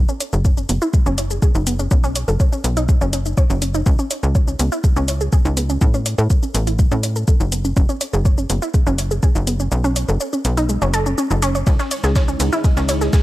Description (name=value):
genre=melodic techno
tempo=123 BPM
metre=4/4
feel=straight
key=C# minor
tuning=A4 = 438 Hz
part: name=tight sequencer bass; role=bass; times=0.0-13.1 s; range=F#1 to A2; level=-20 LUFS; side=equal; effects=sidechain pumping
part: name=wide unison pluck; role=arpeggios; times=0.1-13.2 s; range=G#3 to C#5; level=-23 LUFS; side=right 1 dB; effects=sidechain pumping, dub echo
part: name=electronic shaker and hi-hat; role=drums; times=0.1-13.2 s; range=none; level=-27 LUFS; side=left 1 dB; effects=none
part: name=electronic kick drum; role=drums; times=0.4-13.2 s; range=none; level=-14 LUFS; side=equal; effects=none
part: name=dark analog pad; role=sustained chords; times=12.0-13.2 s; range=G#3 to C#5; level=-26 LUFS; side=right 1 dB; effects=chorus, vintage 12-bit sampler grit, sidechain pumping
part: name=breakbeat sampler-style drum kit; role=drums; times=11.7-13.2 s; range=ride cymbal, snare drum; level=-33 LUFS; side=right 1 dB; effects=high-pass filter on cymbals, high-pass filter on snare
room=little or no reverb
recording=none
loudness=-15 LUFS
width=side -16 dB against mid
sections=0.0-13.2 A section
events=filter sweep on synth arpeggio sound 0.0-13.2; kick drops out 9.7-11.7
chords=0.0 F#sus2; 1.9 B5; 3.9 C#5; 5.8 A6; 7.8 F#sus2; 9.7 B5; 11.7 C#madd9